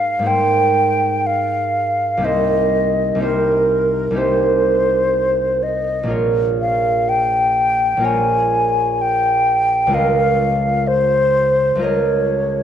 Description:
classical, impressionist duo for flute and harp; 62 BPM; 4/4; rubato; A4 = 438 Hz
mellow hollow silver concert flute; melody; 0.0-12.6 s; Bb4 to Ab5; -16 LUFS; left 2 dB
concert harp; accompaniment; 0.0-12.6 s; Bb1 to Eb5; -19 LUFS; right 3 dB
moderate scoring stage reverb, RT60 1.6 s; dark, warm production; -14 LUFS; side -9 dB against mid
0.0-12.6 A section
0.0 Abmaj9; 2.3 Cm7; 6.1 Bbm7; 10.0 Db69
0.27 1.25 | 2.26 3.24 4.19 5.16 | 6.12 7.10 8.06 9.02 | 9.96 10.89 11.84

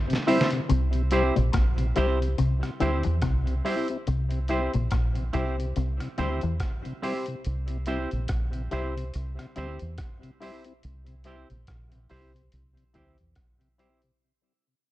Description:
roots reggae; 71 BPM; 4/4; swing 59% on 16ths; C mixolydian; A4 = 439 Hz
mellow tonewheel organ; accompaniment; 0.1-14.1 s; C3 to E4; -35 LUFS; left 2 dB; overdrive, chorus vibrato, slow rotary speaker, tape echo
trip hop sampler-style drum kit; drums; 0.1-14.2 s; hi-hat, kick drum, rim click, snare drum; -30 LUFS; equal
semi-hollow electric guitar; accompaniment; 0.3-14.0 s; C4 to C5; -32 LUFS; right 4 dB; tape echo
warm grand piano; stabs; 0.3-14.0 s; E4 to C5; -31 LUFS; left 3 dB
electric guitar with an envelope filter; riff; 0.7-6.5 s; Bb2 to E3; -31 LUFS; left 5 dB; warbly pitch drift
deep dub fingered electric bass; bass; 0.7-13.4 s; Bb1 to E2; -27 LUFS; equal
light reverb, digital ambience; dark, warm production, faint mains hum; -24 LUFS; side -15 dB against mid
0.7-14.2 A section
drum fill 0.0-0.7; fade-out 0.7-14.2
0.0 C
| 0.69 1.54 2.38 3.23 | 4.07 4.91 5.76 6.60 | 7.45 8.29 9.14 9.98 | 10.83 11.67 12.52 13.36

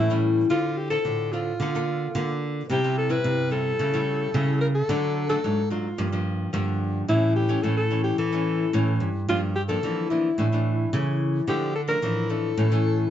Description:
samba and choro; 109 BPM; 4/4; straight; D harmonic minor; A4 = 440 Hz
dark alto saxophone; melody; 0.0-13.1 s; E4 to B4; -26 LUFS; left 1 dB
nylon-string guitar; accompaniment; 0.0-13.1 s; G2 to A4; -28 LUFS; left 1 dB
nylon-string guitar; bass; 0.0-13.0 s; G2 to E3; -25 LUFS; equal
moderate small room reverb, RT60 0.5 s; heard from further back in the room, nothing above 7.8 kHz; -22 LUFS; side -10 dB against mid
0.5-13.1 A section
0.0 A7; 0.5 Dm7; 1.6 Bbmaj7/D; 2.7 C; 3.8 A7/C#; 4.9 D; 6.0 Gm7; 7.1 A; 9.3 Gm7; 10.4 Asus4; 11.5 Dm; 12.6 A
| 0.51 1.05 1.60 2.15 | 2.70 3.25 3.80 4.34 | 4.89 5.44 5.99 6.54 | 7.09 7.63 8.18 8.73 | 9.28 9.83 10.38 10.93 | 11.48 12.03 12.57

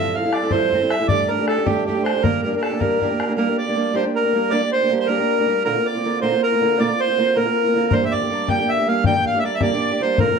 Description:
celtic folk, Celtic jig; 106 BPM (dotted quarters); 6/8; straight; G dorian; A4 = 440 Hz
accordion; melody; 0.0-10.4 s; G4 to G5; -21 LUFS; right 4 dB; plate reverb
mellow wooden flute; second line; 0.0-10.4 s; G4 to G5; -25 LUFS; left 9 dB
fingerpicked acoustic archtop guitar; accompaniment; 0.0-10.4 s; G2 to A4; -22 LUFS; right 3 dB
bodhran; percussion; 0.3-3.3, 7.9-10.3 s; -24 LUFS; left 5 dB
wet small room reverb, RT60 0.5 s; -17 LUFS; side -6 dB against mid
0.0-3.4 A section; 3.4-10.4 B section
0.0 Fmaj7/G; 1.1 Gsus2; 2.2 Gm; 5.7 Bbadd9; 7.9 Gm
0.52 | 1.09 1.66 | 2.23 2.81 | 3.38 3.95 | 4.52 5.09 | 5.65 6.22 | 6.79 7.36 | 7.92 8.49 | 9.05 9.62 | 10.18

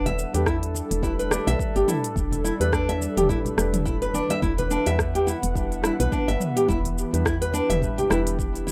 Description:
organic downtempo; 106 BPM; 4/4; swing 57% on 16ths; E minor; A4 = 440 Hz
warbly tape-like pad; sustained chords; 0.0-8.7 s; E3 to F#5; -33 LUFS; equal; chorus, built-in reverb, sidechain pumping
nylon-string guitar; arpeggios; 0.0-8.7 s; D4 to E5; -28 LUFS; equal; tape echo
woody FM bass; bass; 0.0-8.7 s; E1 to E2; -29 LUFS; equal; sidechain pumping
organic electronic drum kit; drums; 0.1-8.7 s; hi-hat, rim click, shaker, toms; -31 LUFS; equal
congas; percussion; 0.1-8.7 s; -38 LUFS; equal
felt-muted upright piano; accompaniment; 0.3-8.7 s; G3 to B4; -35 LUFS; equal; sidechain pumping, tape echo
electronic kick drum; drums; 0.5-8.5 s; -32 LUFS; equal
light reverb; rough home demo mix; -24 LUFS; mono
0.0-8.7 A section
0.0 Gadd9/E; 4.4 Em7
0.46 1.03 1.59 | 2.16 2.73 3.29 3.86 | 4.42 4.99 5.56 6.12 | 6.69 7.25 7.82 8.39

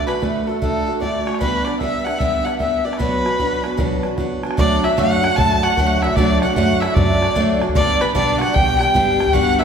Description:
celtic folk, Celtic hornpipe; 151 BPM; 4/4; swing 64% on 8ths; B minor, D major from 4.6 s; A4 = 439 Hz
clear erhu; melody; 0.0-9.6 s; A4 to A5; -20 LUFS; equal
reedy wooden flute; second line; 0.0-9.6 s; A4 to A5; -25 LUFS; left 5 dB
picked steel-string acoustic guitar; accompaniment; 0.0-9.6 s; G2 to G4; -20 LUFS; right 1 dB
bodhran; percussion; 0.1-9.6 s; -23 LUFS; right 1 dB
Irish bouzouki; second line; 4.6-9.6 s; B3 to A4; -25 LUFS; left 1 dB
upright bass; bass; 4.6-9.6 s; G1 to F#2; -24 LUFS; equal
wet large studio reverb, RT60 1.4 s; band playing live in one room; -15 LUFS; side -7 dB against mid
0.0-4.6 A section; 4.6-9.6 B section
0.0 D; 1.4 G; 3.0 Bm; 4.6 D; 7.8 G
0.22 0.61 1.01 | 1.41 1.81 2.20 2.60 | 3.00 3.39 3.79 4.19 | 4.58 4.98 5.38 5.77 | 6.17 6.57 6.96 7.36 | 7.76 8.15 8.55 8.95 | 9.34

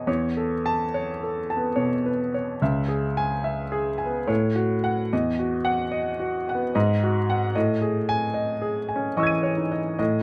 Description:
classical, impressionist solo piano; 73 BPM; 3/4; rubato; A4 = 440 Hz
clear grand piano; solo; 0.0-10.2 s; C#2 to D#7; -25 LUFS; equal
light reverb; close, detailed microphones; -25 LUFS; mono
0.0-10.2 A section
0.1 B9sus4/E; 2.6 C#m7; 4.3 A6; 5.1 Esus2; 6.7 G#5; 7.5 Amaj7#11
| 0.08 0.94 1.77 | 2.60 3.45 4.30 | 5.12 5.92 6.75 | 7.55 8.36 9.18 | 10.00

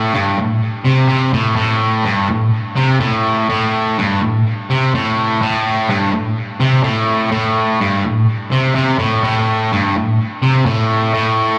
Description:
rock; 125 BPM; 4/4; straight; A minor; A4 = 442 Hz
distorted electric guitar; solo; 0.0-11.6 s; G2 to C3; -16 LUFS; equal; distortion, slapback echo, tape echo
wet club reverb, RT60 0.9 s; live gig heard through the venue's PA, club reverb; -16 LUFS; mono
0.0-11.6 A section
0.14 0.62 1.10 | 1.58 2.05 2.53 3.01 | 3.49 3.97 4.45 4.92 | 5.40 5.88 6.36 6.84 | 7.32 7.80 8.28 8.76 | 9.23 9.71 10.19 10.67 | 11.15

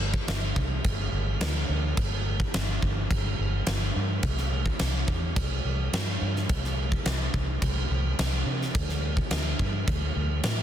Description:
rock, shoegaze and dream pop; 106 BPM; 4/4; straight; A4 = 442 Hz
vintage muted fingered electric bass; bass; 0.0-10.6 s; G1 to C3; -28 LUFS; equal
huge arena drum kit; drums; 0.1-10.6 s; crash cymbal, kick drum, snare drum; -28 LUFS; equal; soft clipping on kick, soft clipping on snare
little or no reverb; dense, heavily limited modern master; -25 LUFS; side -10 dB against mid
0.0-10.6 A section
0.28 0.84 1.41 | 1.97 2.54 3.10 3.67 | 4.23 4.80 5.36 5.93 | 6.49 7.06 7.62 8.18 | 8.75 9.31 9.87 10.44

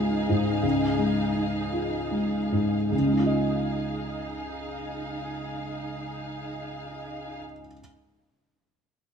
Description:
neoclassical piano and strings; 48-60 BPM (dotted quarters); 6/8; rubato; Db major; A4 = 440 Hz
felt-muted upright piano; accompaniment; 0.0-7.8 s; Db2 to Eb5; -26 LUFS; equal
dark symphonic string section; sustained chords; 0.0-7.4 s; Eb4 to F5; -33 LUFS; equal
moderate large studio reverb, RT60 1.3 s; minimal, uncompressed stereo recording; -25 LUFS; side -6 dB against mid
0.0-2.9 A section; 2.9-7.8 B section
slowing down 0.0-2.9
0.0 Dbadd9
| 0.63 1.72 | 2.92 4.13 | 5.36 6.57

